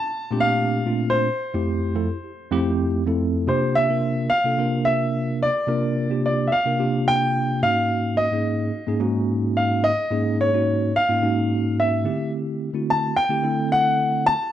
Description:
jazz; 108 BPM; 4/4; straight; A4 = 441 Hz
clear concert grand piano; melody; 0.0-14.5 s; C5 to A5; -22 LUFS; equal; slapback echo
bell-like tine electric piano; accompaniment; 0.0-14.5 s; F2 to Bb4; -22 LUFS; equal; medium stereo tremolo
studio ambience; dry, close 1970s-style studio recording; -19 LUFS; side -11 dB against mid
0.0-3.5 A section; 3.5-14.5 B section
grand piano solo 3.5-14.5
0.0 Bbmaj9; 1.3 Fmaj9; 3.5 C9sus4; 7.6 Ab9sus4; 12.1 D9sus4
0.17 0.72 | 1.27 1.82 2.37 2.93 | 3.48 4.03 4.58 5.14 | 5.69 6.24 6.80 7.35 | 7.90 8.46 9.01 9.56 | 10.12 10.67 11.22 11.78 | 12.33 12.88 13.43 13.99

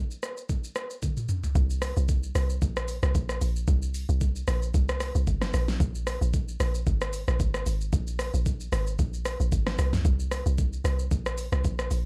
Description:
amapiano; 113 BPM; 4/4; swing 55% on 16ths; A4 = 440 Hz
smooth R&B drum kit; drums; 0.1-12.0 s; hi-hat, kick drum, rim click, shaker, snare drum, toms; -31 LUFS; equal
deep log drum bass; bass; 1.6-12.1 s; G1 to C2; -29 LUFS; equal
little or no reverb; -28 LUFS; mono
0.0-1.6 A section; 1.6-12.1 B section
drum fill 1.0-1.6; drop 1.6-12.1
0.49 1.02 | 1.55 2.09 2.62 3.15 | 3.68 4.21 4.74 5.27 | 5.80 6.33 6.87 7.40 | 7.93 8.46 8.99 9.52 | 10.05 10.58 11.11 11.64

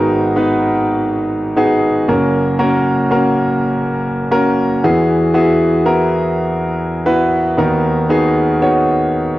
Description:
pop; 87 BPM; 4/4; straight; B major; A4 = 443 Hz
clear concert grand piano; solo; 0.0-9.4 s; F#1 to C#5; -12 LUFS; equal
moderate spring reverb, RT60 1.9 s, studio ambience; home recording on cassette; -12 LUFS; side -16 dB against mid
0.0-9.4 A section
0.0 G#m7; 2.1 F#; 4.8 Eadd9; 7.6 Bmaj7/D#
0.02 0.71 1.40 | 2.08 2.77 3.46 4.15 | 4.83 5.52 6.21 6.90 | 7.58 8.27 8.96

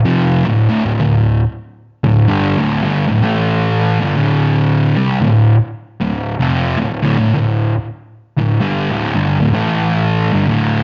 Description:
metal; 76 BPM; 4/4; swing 62% on 8ths; D minor; A4 = 439 Hz
thick fuzz guitar; solo; 0.0-10.8 s; D2 to A3; -15 LUFS; equal; distortion, slapback echo
moderate large studio reverb, RT60 1.2 s, digital ambience; dark, warm production, nothing above 7.5 kHz; -15 LUFS; mono
0.0-10.8 A section
0.0 Dm; 3.2 A5; 4.0 Dm; 9.5 A5; 10.3 D5
0.21 | 1.01 1.80 2.60 3.39 | 4.18 4.97 5.76 6.55 | 7.34 8.13 8.92 9.71 | 10.49

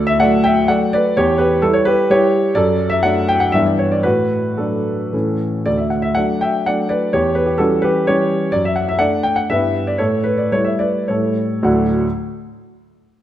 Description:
classical, romantic triple-time dance for piano with dotted rhythms; 99-138 BPM; 3/4; rubato; D major; A4 = 440 Hz
warm grand piano; solo; 0.0-12.1 s; D2 to G5; -14 LUFS; equal
moderate scoring stage reverb, RT60 1.6 s; -14 LUFS; side -12 dB against mid
0.0-11.7 A section; 11.7-13.2 B section
slowing down 7.8-11.7
0.0 D; 1.2 C#dim/E; 2.5 D/F#; 3.5 Em7/G; 4.0 D/A; 5.1 A; 5.7 D; 7.1 C#dim/E; 8.5 D/F#; 9.5 Em/G; 10.0 A5; 11.1 A7; 11.7 D
0.19 0.69 | 1.16 1.62 2.10 | 2.55 3.02 3.53 | 4.04 4.58 5.13 | 5.66 6.17 6.67 | 7.13 7.59 8.08 | 8.54 9.00 9.50 | 9.99 10.51 11.08 | 11.66

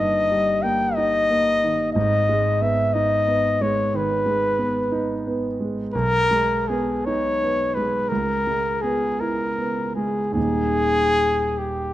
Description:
classical, romantic duo for trumpet and grand piano; 48-62 BPM (dotted quarters); 12/8; rubato; G# minor; A4 = 440 Hz
dark trumpet; melody; 0.0-11.9 s; G4 to G5; -21 LUFS; left 1 dB
dark concert grand piano; accompaniment; 0.0-11.9 s; D#1 to E4; -24 LUFS; right 2 dB
moderate recital hall reverb, RT60 1.4 s; close, detailed microphones; -19 LUFS; side -14 dB against mid
0.0-11.9 A section
0.0 D#/G; 2.0 G#m; 5.9 G#m/B; 8.1 C#m7; 10.4 D#
0.96 | 1.96 2.94 3.94 4.92 | 5.94 7.06 8.10 9.20 | 10.36 11.59

